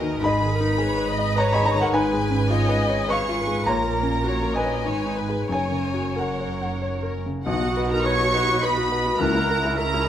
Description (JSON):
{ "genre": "classical, romantic movement for piano and orchestra", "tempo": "88-108 BPM", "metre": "3/4", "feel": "rubato", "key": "B major", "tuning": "A4 = 436 Hz", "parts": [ { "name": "clear chamber violin section", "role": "melody", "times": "0.0-10.1 s", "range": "G#4 to C#6", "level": "-31 LUFS", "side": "left 1 dB", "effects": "none" }, { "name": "clear grand piano", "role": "melody", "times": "0.0-10.1 s", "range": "B1 to C#6", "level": "-24 LUFS", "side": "left 2 dB", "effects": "none" }, { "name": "warm chamber violin section", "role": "second line", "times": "0.0-10.1 s", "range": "F#4 to C#6", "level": "-31 LUFS", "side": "left 1 dB", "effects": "none" }, { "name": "warm chamber viola section", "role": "accompaniment", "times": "0.0-10.1 s", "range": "C#4 to D#5", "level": "-30 LUFS", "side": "equal", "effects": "none" }, { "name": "rich chamber cello section", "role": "bass", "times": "0.0-10.1 s", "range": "C#2 to D#3", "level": "-30 LUFS", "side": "right 3 dB", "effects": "none" }, { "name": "rich chamber double bass section", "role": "bass", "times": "0.0-10.1 s", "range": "F#1 to D#2", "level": "-29 LUFS", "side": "right 3 dB", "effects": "none" }, { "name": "bright concert flute", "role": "second line", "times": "7.5-10.1 s", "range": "F#5 to C#6", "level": "-30 LUFS", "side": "equal", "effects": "none" }, { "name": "warm oboe", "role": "second line", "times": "7.5-10.1 s", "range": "B4 to F#5", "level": "-30 LUFS", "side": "right 2 dB", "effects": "none" }, { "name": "dark French horn section", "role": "sustained chords", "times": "7.5-9.4 s", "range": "A#3 to E4", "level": "-30 LUFS", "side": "left 2 dB", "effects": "none" }, { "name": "warm trumpet section", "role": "stabs", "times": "7.5-10.1 s", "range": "F#4 to C#5", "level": "-28 LUFS", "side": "right 2 dB", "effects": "none" } ], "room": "light reverb", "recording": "close, detailed microphones", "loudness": "-20 LUFS", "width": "side -10 dB against mid", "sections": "0.0-7.5 A section; 7.5-10.1 B section", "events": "none", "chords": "0.2 G#m; 1.9 C#7/G#; 3.7 F#/A#; 4.9 G#m; 5.5 F#; 7.5 B; 9.2 A#dim/C#" }